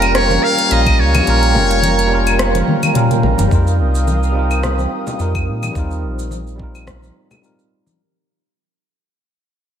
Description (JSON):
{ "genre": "sunset chillout", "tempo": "107 BPM", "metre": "4/4", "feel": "swing 55% on 16ths", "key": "Eb mixolydian", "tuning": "A4 = 440 Hz", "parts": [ { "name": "trumpet with metal mute", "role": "melody", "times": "0.0-3.0 s", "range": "Bb4 to F5", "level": "-18 LUFS", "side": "left 1 dB", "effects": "ping-pong delay" }, { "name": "bell-like tine electric piano", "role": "accompaniment", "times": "0.0-8.0 s", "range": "G3 to Bb4", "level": "-20 LUFS", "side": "equal", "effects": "auto-pan, low-pass filter, ping-pong delay, slapback echo" }, { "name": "airy breathy pad", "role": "sustained chords", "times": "0.0-8.0 s", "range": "Bb4 to Eb6", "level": "-21 LUFS", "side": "right 3 dB", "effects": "chorus, phaser" }, { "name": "warm sub bass", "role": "bass", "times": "0.0-7.1 s", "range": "F1 to Bb2", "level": "-17 LUFS", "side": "equal", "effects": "tube saturation" }, { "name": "smooth R&B drum kit", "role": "drums", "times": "0.0-8.0 s", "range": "claves, hi-hat, rim click, shaker, toms", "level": "-19 LUFS", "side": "left 1 dB", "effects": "none" }, { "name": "congas", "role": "percussion", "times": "0.3-8.0 s", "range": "none", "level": "-25 LUFS", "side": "left 3 dB", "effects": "none" }, { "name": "electronic kick drum", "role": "drums", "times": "0.9-7.0 s", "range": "none", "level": "-19 LUFS", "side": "equal", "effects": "none" } ], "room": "moderate lush hall reverb, RT60 1.9 s", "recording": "big arena sound", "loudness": "-13 LUFS", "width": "side -9 dB against mid", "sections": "0.0-3.5 A section; 3.5-8.0 B section", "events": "kick drops out 1.3-3.5; drum fill 2.7-3.5; fade-out 3.5-8.0; filter sweep on tine electric piano 3.5-8.0", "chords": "0.0 Bbm6; 3.5 F9sus4; 5.8 Eb69" }